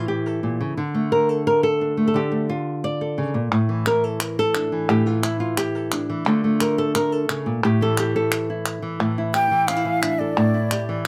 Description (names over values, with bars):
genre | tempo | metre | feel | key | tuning
flamenco | 175 BPM | 4/4 | straight | unclear | A4 = 442 Hz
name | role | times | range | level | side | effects
flamenco guitar | melody | 0.0-11.1 s | A2 to D5 | -22 LUFS | equal | none
palmas hand claps | percussion | 3.5-11.1 s | none | -27 LUFS | equal | none
breathy jazz flute | second line | 9.3-11.1 s | D5 to G5 | -24 LUFS | equal | slapback echo
room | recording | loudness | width
little or no reverb | close, detailed microphones | -22 LUFS | mono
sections
0.0-9.0 A section; 9.0-11.1 B section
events
flute solo 9.0-11.1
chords
0.0 A5; 0.8 Dm; 3.5 Asus4; 6.3 Dm; 7.6 A5; 9.0 Asus4